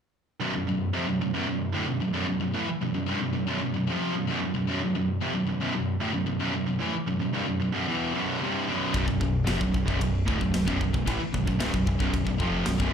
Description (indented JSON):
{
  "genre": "heavy metal",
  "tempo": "113 BPM",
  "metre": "4/4",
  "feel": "straight",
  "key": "unclear",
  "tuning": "A4 = 442 Hz",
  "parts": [
    { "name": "high-gain distorted guitar", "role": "riff", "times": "0.4-12.9 s", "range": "B1 to E#3", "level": "-30 LUFS", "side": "left 9 dB", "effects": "distortion, slapback echo" },
    { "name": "high-gain distorted guitar", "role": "riff", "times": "0.4-12.9 s", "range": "B1 to E#3", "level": "-28 LUFS", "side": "right 6 dB", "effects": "distortion, slapback echo" },
    { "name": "overdriven electric guitar", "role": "riff", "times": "8.9-12.9 s", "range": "B1 to E#3", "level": "-34 LUFS", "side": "equal", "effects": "none" },
    { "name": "growling picked electric bass", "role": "bass", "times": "8.9-12.9 s", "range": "B0 to A1", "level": "-30 LUFS", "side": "left 1 dB", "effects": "overdrive" },
    { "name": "tight metal drum kit", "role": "drums", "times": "8.9-12.9 s", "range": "kick drum, ride cymbal, snare drum", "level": "-30 LUFS", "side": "left 1 dB", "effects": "none" }
  ],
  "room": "studio ambience",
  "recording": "live gig heard through the venue's PA, club reverb",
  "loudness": "-25 LUFS",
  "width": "side -7 dB against mid",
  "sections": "0.4-12.9 A section",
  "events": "none",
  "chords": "0.4 B5",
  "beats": "| 0.41 0.95 1.48 2.01 | 2.54 3.08 3.61 4.14 | 4.67 5.21 5.74 6.27 | 6.81 7.34 7.87 8.40 | 8.94 9.47 10.00 10.54 | 11.07 11.60 12.14 12.67"
}